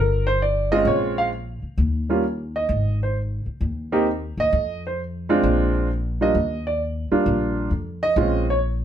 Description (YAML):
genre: jazz piano trio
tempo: 131 BPM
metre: 4/4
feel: swing 68% on 8ths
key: Eb major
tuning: A4 = 440 Hz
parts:
  - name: clear concert grand piano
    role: melody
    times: 0.0-8.6 s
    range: G3 to F5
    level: -21 LUFS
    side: right 2 dB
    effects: none
  - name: upright bass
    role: bass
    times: 0.0-8.8 s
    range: G1 to F2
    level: -24 LUFS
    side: left 1 dB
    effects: none
room: moderate studio reverb, RT60 0.6 s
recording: band playing live in one room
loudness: -20 LUFS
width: side -10 dB against mid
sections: 0.0-8.8 A section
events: none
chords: 0.0 C5; 0.9 Bbm7; 1.8 N.C.; 2.7 Ab5; 4.5 F5; 5.4 Bb7; 6.3 Ebmaj7; 8.2 Bbm7